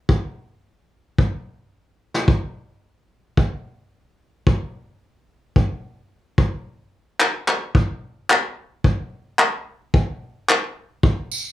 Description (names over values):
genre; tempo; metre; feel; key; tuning
pop; 110 BPM; 4/4; straight; none; none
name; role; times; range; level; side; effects
vintage brush drum kit; drums; 0.1-11.2 s; handclaps, kick drum, snare drum; -16 LUFS; equal; none
tambourine; percussion; 11.3-11.4 s; none; -25 LUFS; right 4 dB; none
room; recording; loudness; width
moderate small room reverb, RT60 0.5 s; small room ambience; -19 LUFS; side -14 dB against mid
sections
0.0-2.3 A section; 2.3-11.5 B section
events
drum fill 1.7-2.3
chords
none